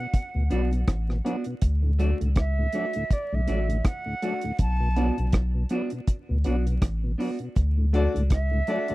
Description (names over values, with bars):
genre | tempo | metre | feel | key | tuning
roots reggae | 81 BPM | 4/4 | swing 56% on 16ths | D major | A4 = 435 Hz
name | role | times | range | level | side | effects
concert flute | melody | 0.0-8.9 s | D5 to A5 | -32 LUFS | right 3 dB | tape echo
tonewheel organ | accompaniment | 0.0-8.9 s | D2 to D4 | -31 LUFS | left 1 dB | overdrive, slow rotary speaker
deep reggae drum kit | drums | 0.1-8.9 s | hi-hat, kick drum, rim click | -24 LUFS | equal | none
warm sub bass | bass | 0.4-8.6 s | A1 to D2 | -24 LUFS | equal | none
semi-hollow electric guitar | accompaniment | 0.5-8.9 s | A3 to F#4 | -32 LUFS | right 1 dB | tape echo
clear baby grand piano | stabs | 7.9-8.9 s | F#4 to D5 | -29 LUFS | left 4 dB | none
room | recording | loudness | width
little or no reverb | dry, close 1970s-style studio recording, vinyl crackle | -23 LUFS | side -18 dB against mid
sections
0.0-8.9 A section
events
none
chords
0.0 Bm; 1.6 D; 4.6 Bm; 7.6 D